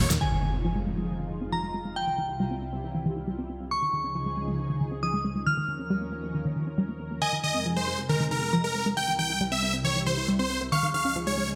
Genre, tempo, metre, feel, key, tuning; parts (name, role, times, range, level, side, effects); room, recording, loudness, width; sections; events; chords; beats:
trance; 137 BPM; 4/4; straight; F minor; A4 = 439 Hz
big supersaw lead; melody; 0.0-0.1, 7.2-11.5 s; Bb4 to G5; -30 LUFS; equal; phaser, low-pass filter
analog string pad; sustained chords; 0.0-11.6 s; C2 to Bb4; -36 LUFS; equal; ensemble chorus, phaser
unison pluck; arpeggios; 0.0-11.6 s; Eb3 to E4; -33 LUFS; equal; tape echo
glassy synth bell; second line; 0.2-11.3 s; G5 to F6; -34 LUFS; equal; chorus, dub echo
impact; sound effects; 0.2-2.0 s; -35 LUFS; equal
moderate lush hall reverb, RT60 1.7 s; -28 LUFS; mono
0.2-11.6 A section
impact 0.2-2.0
0.2 Fm7; 2.0 C; 3.7 Dbadd9; 5.5 Eb7(no3); 7.2 Fm7; 9.0 C; 10.7 Dbadd9
| 0.21 0.65 1.09 1.52 | 1.96 2.40 2.84 3.28 | 3.71 4.15 4.59 5.03 | 5.47 5.90 6.34 6.78 | 7.22 7.66 8.09 8.53 | 8.97 9.41 9.85 10.28 | 10.72 11.16